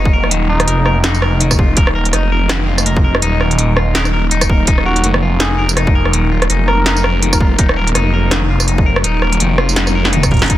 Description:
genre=half-time drum and bass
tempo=165 BPM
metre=4/4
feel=swing 57% on 16ths, half-time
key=Eb minor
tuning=A4 = 440 Hz
part: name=dark analog pad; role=sustained chords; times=0.0-10.6 s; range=Gb3 to Eb5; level=-22 LUFS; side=equal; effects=chorus, phaser, sidechain pumping
part: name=clean electric guitar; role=arpeggios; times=0.0-10.6 s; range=Eb3 to Bb4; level=-20 LUFS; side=left 3 dB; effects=tape echo
part: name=phased detuned saw bass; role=bass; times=0.0-10.6 s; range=Eb1 to F1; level=-15 LUFS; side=equal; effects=phaser
part: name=electronic kick drum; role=drums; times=0.1-10.6 s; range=none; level=-13 LUFS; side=equal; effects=none
part: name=industrial drum kit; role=drums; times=0.2-10.6 s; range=hi-hat, rim click, snare drum, tambourine, toms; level=-17 LUFS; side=equal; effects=soft clipping on snare
part: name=trumpet with cup mute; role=melody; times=0.5-1.0, 4.9-7.5 s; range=Eb4 to Bb4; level=-23 LUFS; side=equal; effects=dub echo
room=little or no reverb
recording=dense, heavily limited modern master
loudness=-11 LUFS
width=side -14 dB against mid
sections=0.0-10.6 A section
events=drum fill 9.8-10.5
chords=0.0 Ebm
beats=| 0.32 0.68 1.04 1.41 | 1.77 2.13 2.50 2.86 | 3.22 3.59 3.95 4.32 | 4.68 5.04 5.41 5.77 | 6.13 6.50 6.86 7.22 | 7.59 7.95 8.31 8.68 | 9.04 9.41 9.77 10.13 | 10.50

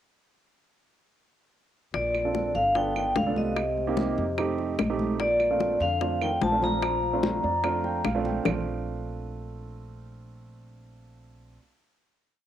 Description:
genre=Afro-Cuban jazz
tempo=147 BPM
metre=4/4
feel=straight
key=Bb major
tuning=A4 = 440 Hz
part: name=vibraphone with medium hard mallets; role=melody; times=1.9-8.0 s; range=D5 to Bb5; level=-27 LUFS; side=equal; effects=none
part: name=breathy trombone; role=second line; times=1.9-8.0 s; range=Bb2 to F3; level=-34 LUFS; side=left 7 dB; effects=cassette tape
part: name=upright bass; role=bass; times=1.9-11.6 s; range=G1 to F2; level=-35 LUFS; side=equal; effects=none
part: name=bongos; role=percussion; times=1.9-8.6 s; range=none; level=-32 LUFS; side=left 9 dB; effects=none
part: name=congas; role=percussion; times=1.9-8.6 s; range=none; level=-32 LUFS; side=equal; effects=none
part: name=claves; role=percussion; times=2.1-8.6 s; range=none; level=-38 LUFS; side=right 9 dB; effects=none
part: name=warm grand piano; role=accompaniment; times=2.2-11.6 s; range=A3 to G5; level=-31 LUFS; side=right 6 dB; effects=cassette tape
room=moderate spring reverb, RT60 1.2 s, small room ambience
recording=home recording on cassette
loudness=-24 LUFS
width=side -10 dB against mid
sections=1.9-8.5 A section; 8.5-11.7 final chord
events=grand piano fill 7.2-8.5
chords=1.9 Bbmaj7; 2.8 G7; 3.6 Cm7; 4.4 F7; 5.2 Bbmaj7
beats=| 1.94 2.35 2.75 3.16 | 3.57 3.97 4.38 4.79 | 5.20 5.60 6.01 6.42 | 6.83 7.23 7.64 8.05 | 8.46 8.86 9.27 9.68 | 10.09 10.49 10.90 11.30

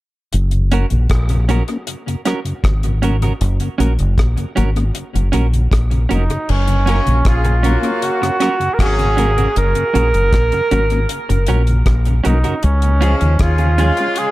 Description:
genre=roots reggae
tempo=78 BPM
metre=4/4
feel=straight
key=F# major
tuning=A4 = 440 Hz
part: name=deep dub fingered electric bass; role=bass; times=0.3-13.9 s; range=E#1 to D#2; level=-15 LUFS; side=equal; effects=none
part: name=deep reggae drum kit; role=drums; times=0.3-14.3 s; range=crash cymbal, hi-hat, kick drum, rim click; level=-20 LUFS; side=equal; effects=tape echo
part: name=mellow tonewheel organ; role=accompaniment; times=0.5-14.1 s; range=F#2 to C#4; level=-24 LUFS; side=left 1 dB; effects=chorus vibrato, slow rotary speaker, tape echo
part: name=clean electric guitar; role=accompaniment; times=0.7-13.9 s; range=C#4 to A#4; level=-24 LUFS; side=right 5 dB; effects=tape echo
part: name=clear flugelhorn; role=melody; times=6.1-14.3 s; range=C#4 to A#4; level=-19 LUFS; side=right 2 dB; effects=tape echo
part: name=clear horn section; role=second line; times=6.9-14.3 s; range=E#3 to G#4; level=-23 LUFS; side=left 2 dB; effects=tape echo
room=light reverb, small room ambience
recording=echo-heavy mix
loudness=-13 LUFS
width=side -17 dB against mid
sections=0.3-6.5 A section; 6.5-14.3 B section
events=none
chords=0.3 F#; 12.6 C#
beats=| 0.33 1.09 1.86 2.63 | 3.40 4.17 4.94 5.71 | 6.48 7.25 8.02 8.79 | 9.55 10.32 11.09 11.86 | 12.63 13.40 14.16

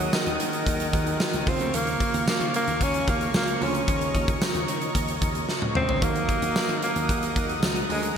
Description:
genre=1980s-style pop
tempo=112 BPM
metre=4/4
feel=straight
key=Eb minor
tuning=A4 = 440 Hz
part: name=warm alto saxophone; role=melody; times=0.0-8.2 s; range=Eb3 to Db4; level=-27 LUFS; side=equal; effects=digital delay
part: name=bell-like tine electric piano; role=accompaniment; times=0.0-8.2 s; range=Db3 to Ab4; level=-33 LUFS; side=right 5 dB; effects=wide subtle chorus
part: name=lush unison pad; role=sustained chords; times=0.0-8.2 s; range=Bb4 to Eb6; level=-32 LUFS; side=equal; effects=chorus
part: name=slap bass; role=bass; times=0.0-8.1 s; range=Db2 to Eb3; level=-31 LUFS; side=equal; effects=none
part: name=huge arena drum kit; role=drums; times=0.1-8.2 s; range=hi-hat, kick drum, snare drum, tambourine, toms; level=-26 LUFS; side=equal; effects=gated reverb
room=moderate lush hall reverb, RT60 1.8 s, studio ambience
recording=bright 1980s-style digital production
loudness=-22 LUFS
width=side -7 dB against mid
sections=0.0-8.2 A section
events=drum fill 5.5-6.0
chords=0.0 Ebm; 1.5 Bbm; 6.0 Ebm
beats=0.13 0.67 1.20 | 1.74 2.27 2.81 3.34 | 3.88 4.42 4.95 5.49 | 6.02 6.56 7.09 7.63 | 8.16

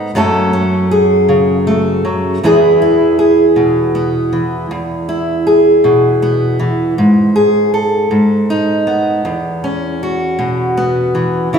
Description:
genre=folk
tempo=53 BPM (dotted quarters)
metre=6/8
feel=straight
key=E major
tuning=A4 = 440 Hz
part: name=fingerpicked steel-string acoustic guitar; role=solo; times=0.0-11.6 s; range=E2 to A4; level=-11 LUFS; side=equal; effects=none
room=wet recital hall reverb, RT60 1.9 s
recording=recorded in a church or concert hall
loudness=-11 LUFS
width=side -6 dB against mid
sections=0.0-11.5 A section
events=none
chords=0.1 F#m; 2.4 E; 7.0 G#m; 9.2 E5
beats=| 0.14 1.28 | 2.42 3.56 | 4.69 5.83 | 6.97 8.11 | 9.24 10.38 | 11.52

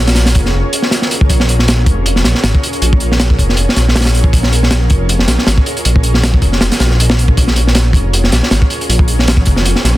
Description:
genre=drum and bass, jungle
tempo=158 BPM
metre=4/4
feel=swing 55% on 16ths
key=Bb minor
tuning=A4 = 445 Hz
part: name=dark detuned saw bass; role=bass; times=0.0-10.0 s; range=F1 to Db2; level=-13 LUFS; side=equal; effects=tube saturation
part: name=crunchy breakbeat drum kit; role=drums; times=0.1-9.9 s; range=hi-hat, kick drum, snare drum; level=-12 LUFS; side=equal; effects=none
room=little or no reverb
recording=dense, heavily limited modern master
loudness=-9 LUFS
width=side -16 dB against mid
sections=0.0-1.3 A section; 1.3-10.0 A section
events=drop 0.0-1.3, 1.3-10.0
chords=none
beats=0.16 0.54 0.92 | 1.30 1.68 2.06 2.44 | 2.82 3.20 3.58 3.96 | 4.34 4.72 5.10 5.48 | 5.86 6.24 6.62 7.00 | 7.37 7.75 8.13 8.51 | 8.89 9.27 9.65

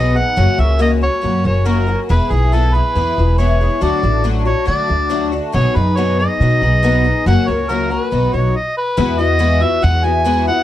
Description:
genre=folk rock and heartland rock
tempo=139 BPM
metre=4/4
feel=straight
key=E major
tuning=A4 = 440 Hz
part: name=mellow harmonica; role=melody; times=0.0-10.6 s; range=G#4 to G#5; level=-18 LUFS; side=right 1 dB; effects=none
part: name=picked twelve-string acoustic guitar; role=accompaniment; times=0.0-10.6 s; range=F#2 to G#4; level=-19 LUFS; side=left 4 dB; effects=analog chorus
part: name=upright bass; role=bass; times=0.0-10.5 s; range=E1 to D3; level=-16 LUFS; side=equal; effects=none
room=light reverb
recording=dark, warm production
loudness=-13 LUFS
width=side -12 dB against mid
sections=0.0-9.0 A section; 9.0-10.6 B section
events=stop 8.6-9.0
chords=0.4 F#; 2.1 E; 3.8 D; 5.5 B6; 7.3 F#; 8.1 B; 9.0 Eadd9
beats=| 0.37 0.80 1.23 1.66 | 2.10 2.53 2.96 3.39 | 3.82 4.25 4.68 5.11 | 5.54 5.97 6.40 6.83 | 7.26 7.69 8.12 8.55 | 8.98 9.41 9.84 10.27

